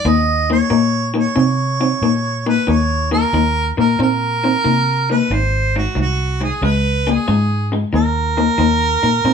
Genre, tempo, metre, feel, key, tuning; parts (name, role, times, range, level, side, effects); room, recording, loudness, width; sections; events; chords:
electric blues shuffle; 92 BPM; 4/4; swing 68% on 8ths; A4 = 440 Hz
mellow harmonica; melody; 0.0-9.3 s; Gb4 to Eb5; -19 LUFS; right 3 dB
electric guitar through a small old amp; riff; 0.0-9.3 s; Ab2 to C4; -18 LUFS; left 4 dB
vintage muted fingered electric bass; bass; 0.0-9.3 s; Ab1 to C3; -20 LUFS; right 1 dB
moderate studio reverb, RT60 0.7 s; band playing live in one room; -14 LUFS; side -7 dB against mid
0.0-9.3 A section
0.1 Eb5; 5.3 Ab; 6.6 Db5; 7.9 Eb5